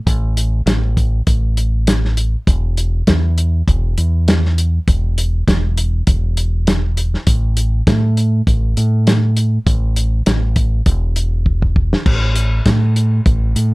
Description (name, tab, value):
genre	straight-eighth soul blues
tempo	100 BPM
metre	4/4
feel	swing 55% on 16ths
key	unclear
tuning	A4 = 440 Hz
part	deep dub fingered electric bass	bass	0.1-13.7 s	E1 to A2	-15 LUFS	equal	none
part	warm soul drum kit	drums	0.1-13.7 s	crash cymbal, hi-hat, kick drum, snare drum	-16 LUFS	equal	none
room	little or no reverb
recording	none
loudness	-13 LUFS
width	side -23 dB against mid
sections	0.0-12.1 A section; 12.1-13.7 B section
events	drum fill 11.5-12.1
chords	none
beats	| 0.07 0.67 1.27 1.88 | 2.48 3.08 3.68 4.28 | 4.88 5.48 6.08 6.68 | 7.28 7.88 8.47 9.07 | 9.67 10.27 10.87 11.47 | 12.07 12.67 13.27